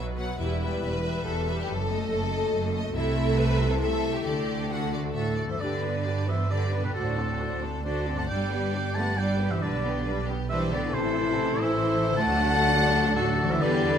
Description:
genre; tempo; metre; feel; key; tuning
classical, dramatic, fast romantic movement for symphony orchestra; 136 BPM; 3/4; straight; G major; A4 = 440 Hz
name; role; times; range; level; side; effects
bright symphonic violin section; melody; 0.0-14.0 s; G4 to F#5; -39 LUFS; left 3 dB; none
rich symphonic viola section; accompaniment; 0.0-14.0 s; E3 to B4; -31 LUFS; right 2 dB; none
concert harp; arpeggios; 0.0-14.0 s; E2 to D5; -33 LUFS; left 8 dB; none
clear symphonic cello section; bass; 0.0-14.0 s; E2 to A3; -31 LUFS; right 2 dB; none
clear symphonic double bass section; bass; 0.0-14.0 s; E1 to G2; -31 LUFS; right 2 dB; none
clear symphonic violin section; second line; 0.4-14.0 s; E4 to F#5; -32 LUFS; left 2 dB; none
clear oboe; second line; 5.2-14.0 s; A4 to A5; -30 LUFS; equal; none
room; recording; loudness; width
moderate scoring stage reverb, RT60 1.8 s; none; -24 LUFS; side -8 dB against mid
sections
0.0-5.6 A section; 5.6-14.0 B section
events
none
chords
0.4 Em; 1.7 D#dim/F#; 3.0 Am/C; 4.3 D; 5.6 G; 7.0 D7; 8.3 G; 9.6 G/B; 10.9 Am; 12.3 D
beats
| 0.39 0.82 1.25 | 1.68 2.10 2.53 | 2.95 3.38 3.81 | 4.26 4.71 5.16 | 5.61 6.06 6.51 | 6.95 7.40 7.85 | 8.29 8.74 9.18 | 9.62 10.06 10.50 | 10.94 11.38 11.83 | 12.28 12.72 13.16 | 13.61

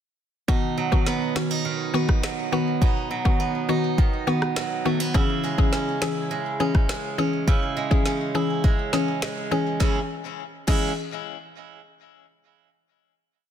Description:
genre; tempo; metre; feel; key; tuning
dancehall; 103 BPM; 4/4; straight; C# minor; A4 = 440 Hz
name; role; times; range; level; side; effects
mallet-like synth pluck; accompaniment; 0.5-10.9 s; D#3 to G#4; -26 LUFS; left 2 dB; chorus, sidechain pumping
picked swing-style acoustic guitar; arpeggios; 0.5-10.9 s; B2 to E4; -27 LUFS; right 5 dB; ping-pong delay
afro-pop drum kit; drums; 0.5-10.8 s; crash cymbal, finger snaps, kick drum, rim click, snare drum; -23 LUFS; equal; soft clipping on snare
room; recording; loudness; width
light reverb; dense, heavily limited modern master; -21 LUFS; side -9 dB against mid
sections
0.5-9.8 verse; 9.8-12.1 final chord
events
none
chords
0.5 B; 5.1 C#m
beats
| 0.48 1.07 1.65 2.23 | 2.81 3.40 3.98 4.56 | 5.14 5.73 6.31 6.89 | 7.47 8.06 8.64 9.22 | 9.80 10.39

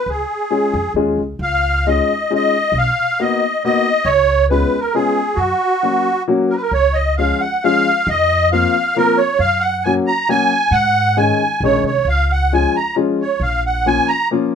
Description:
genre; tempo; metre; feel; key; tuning
musette waltz; 135 BPM; 3/4; rubato; F# major, Db major from 6.7 s; A4 = 440 Hz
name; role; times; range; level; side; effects
musette accordion; melody; 0.0-14.3 s; F#4 to Bb5; -16 LUFS; right 1 dB; none
upright bass; bass; 0.1-14.0 s; Bb1 to Ab2; -20 LUFS; equal; none
warm upright piano; accompaniment; 0.5-14.5 s; Eb3 to G#4; -18 LUFS; left 5 dB; none
room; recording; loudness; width
light reverb; minimal, uncompressed stereo recording; -14 LUFS; side -7 dB against mid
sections
0.0-6.7 A section; 6.7-14.6 B section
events
none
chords
0.1 C#add9; 2.7 Bmaj7; 4.1 C#7; 5.4 F#; 6.7 Db; 8.1 Fsus4; 9.4 Gb; 10.7 Absus4; 12.1 Db; 13.4 Bbm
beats
| 0.07 0.51 0.96 | 1.41 1.86 2.31 | 2.75 3.18 3.62 | 4.06 4.50 4.94 | 5.38 5.83 6.28 | 6.73 7.18 7.63 | 8.07 8.51 8.95 | 9.39 9.84 10.28 | 10.72 11.17 11.62 | 12.07 12.52 12.97 | 13.41 13.86 14.30

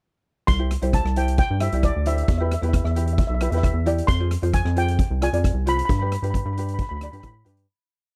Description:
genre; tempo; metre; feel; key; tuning
calypso; 133 BPM; 4/4; straight; C major; A4 = 441 Hz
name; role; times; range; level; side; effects
steel pan; melody; 0.5-7.3 s; D5 to C6; -31 LUFS; equal; none
rubbery square bass; bass; 0.5-7.7 s; B1 to A2; -25 LUFS; equal; none
street-band drum kit; drums; 0.5-7.7 s; hi-hat, kick drum, rim click; -26 LUFS; equal; none
tenor ukulele; accompaniment; 0.6-7.7 s; D4 to D5; -30 LUFS; equal; none
room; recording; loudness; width
little or no reverb; dry, close 1970s-style studio recording; -22 LUFS; mono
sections
0.5-7.7 verse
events
fade-out 5.9-7.7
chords
0.5 Cadd9; 2.3 Em; 4.1 Fm; 5.9 G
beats
| 0.47 0.92 1.38 1.82 | 2.28 2.73 3.18 3.63 | 4.08 4.53 4.98 5.43 | 5.88 6.33 6.78 7.23

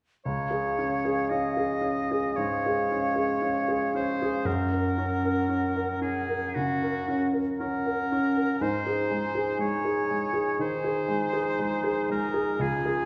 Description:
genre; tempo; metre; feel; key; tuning
classical; 58 BPM; 4/4; uneven beats, rubato; Db major; A4 = 438 Hz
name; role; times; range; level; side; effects
warm grand piano; melody; 0.3-13.1 s; Db2 to Bb4; -30 LUFS; equal; none
bright oboe; second line; 0.3-13.1 s; Gb4 to Eb5; -34 LUFS; equal; none
mellow clarinet; second line; 0.3-13.1 s; Ab3 to F4; -37 LUFS; equal; none
mellow hollow concert flute; second line; 0.3-13.1 s; F5 to Ab5; -35 LUFS; equal; none
room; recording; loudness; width
wet recital hall reverb, RT60 1.8 s; recorded in a church or concert hall; -27 LUFS; mono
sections
0.3-13.1 A section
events
none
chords
0.3 Db; 4.5 Gb; 8.6 Ab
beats
| 0.26 1.31 2.36 3.42 | 4.46 5.50 6.53 7.59 | 8.62 9.61 10.60 11.60 | 12.60

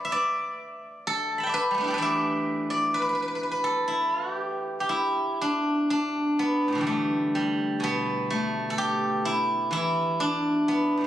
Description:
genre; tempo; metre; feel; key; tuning
chinese traditional, Chinese solo plucked strings; 63 BPM; 2/4; rubato; unclear; A4 = 440 Hz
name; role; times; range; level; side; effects
steel-string zither; solo; 0.0-11.1 s; A2 to B5; -24 LUFS; equal; none
room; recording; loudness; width
wet concert hall reverb, RT60 1.8 s; recorded on a phone in the room, studio ambience, compression; -24 LUFS; side -12 dB against mid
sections
0.0-5.9 A section; 5.9-11.1 B section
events
none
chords
none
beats
| 0.11 1.06 | 2.00 2.92 | 3.87 4.88 | 5.88 6.86 | 7.82 8.78 | 9.73 10.68

